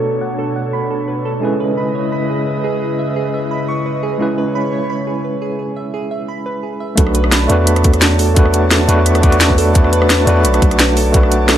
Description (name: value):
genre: liquid drum and bass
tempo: 173 BPM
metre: 4/4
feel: straight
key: B dorian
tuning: A4 = 443 Hz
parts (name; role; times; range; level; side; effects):
- overdriven tine electric piano; accompaniment; 0.0-11.6 s; G#3 to B4; -18 LUFS; equal; fast tremolo, digital delay
- airy breathy pad; sustained chords; 0.0-11.6 s; B2 to A5; -22 LUFS; left 1 dB; chorus, sidechain pumping
- harp-like synth pluck; arpeggios; 0.0-11.6 s; G#4 to D6; -22 LUFS; right 3 dB; chorus, tape echo
- long sustained 808-style bass; bass; 7.0-11.6 s; B1 to E2; -15 LUFS; equal; none
- drum and bass drum kit; drums; 7.0-11.6 s; hi-hat, rim click, snare drum; -16 LUFS; equal; overdrive
- electronic kick drum; drums; 7.0-11.2 s; none; -12 LUFS; equal; none
room: light reverb, digital ambience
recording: low-pass filter, lossy compression artefacts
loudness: -13 LUFS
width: side -11 dB against mid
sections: 0.0-7.0 A section; 7.0-11.6 B section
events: filter sweep 0.0-7.0; break 5.6-7.0; drop 7.0-11.6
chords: 0.0 Bm7; 1.4 C#m7; 7.0 Bm7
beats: | 0.04 0.39 0.73 1.08 | 1.43 1.78 2.12 2.47 | 2.82 3.16 3.51 3.86 | 4.20 4.55 4.90 5.24 | 5.59 5.94 6.29 6.63 | 6.98 7.33 7.67 8.02 | 8.37 8.71 9.06 9.41 | 9.75 10.10 10.45 10.79 | 11.14 11.49